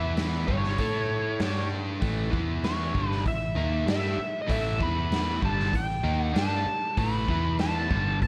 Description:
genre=blues rock power trio and southern rock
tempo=97 BPM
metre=4/4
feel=straight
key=A mixolydian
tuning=A4 = 438 Hz
part: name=biting lead guitar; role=melody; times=0.0-8.3 s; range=C#5 to B5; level=-33 LUFS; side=equal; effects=wah, overdrive
part: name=overdriven electric guitar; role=riff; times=0.0-8.3 s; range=G2 to A4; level=-33 LUFS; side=equal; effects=none
part: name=vintage muted picked electric bass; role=bass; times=0.0-8.3 s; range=G1 to A2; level=-33 LUFS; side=equal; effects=none
part: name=raw garage drum kit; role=drums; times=0.2-8.3 s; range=hi-hat, kick drum, snare drum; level=-33 LUFS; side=equal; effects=none
room=moderate club reverb, RT60 0.6 s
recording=none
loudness=-27 LUFS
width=mono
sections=0.0-8.3 A section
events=none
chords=0.5 A; 1.4 G5; 2.0 A5; 2.3 E5; 3.0 A5; 4.8 E5; 5.4 A5; 7.3 E5

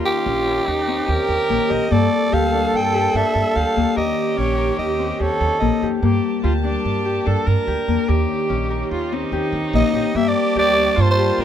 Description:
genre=contemporary instrumental, chamber music in an uneven meter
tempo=146 BPM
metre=5/4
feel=straight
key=unclear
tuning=A4 = 440 Hz
part: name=warm viola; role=second line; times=0.0-11.4 s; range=Eb4 to Bb4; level=-23 LUFS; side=right 3 dB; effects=none
part: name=warm studio string section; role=sustained chords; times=0.0-11.4 s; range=Eb3 to A5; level=-28 LUFS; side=right 3 dB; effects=none
part: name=Celtic harp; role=arpeggios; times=0.0-11.4 s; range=Bb3 to Bb4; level=-22 LUFS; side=left 10 dB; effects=none
part: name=growling soprano saxophone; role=melody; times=0.1-5.9, 9.8-11.4 s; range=G4 to G5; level=-21 LUFS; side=right 1 dB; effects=none
part: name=upright bass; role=bass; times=0.3-11.4 s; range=Bb1 to G2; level=-22 LUFS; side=right 2 dB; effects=none
room=light reverb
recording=none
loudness=-16 LUFS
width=side -9 dB against mid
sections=0.0-11.4 A section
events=none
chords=0.0 Eb7; 1.9 Gmadd9; 4.0 Eb7; 6.0 Gmadd9; 8.1 Eb7; 10.2 Gmadd9

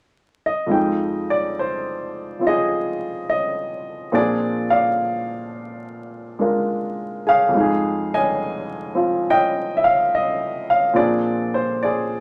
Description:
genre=jazz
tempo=70 BPM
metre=4/4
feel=swing 67% on 8ths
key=unclear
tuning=A4 = 440 Hz
part: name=clear upright piano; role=accompaniment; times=0.5-12.2 s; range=F2 to Ab5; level=-21 LUFS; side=equal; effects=none
room=moderate studio reverb, RT60 0.7 s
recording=vinyl crackle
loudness=-21 LUFS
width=mono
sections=0.7-12.2 A section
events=none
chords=0.0 N.C.; 0.7 Fm7; 4.1 Bb7; 7.5 Fm7; 11.0 Bb7

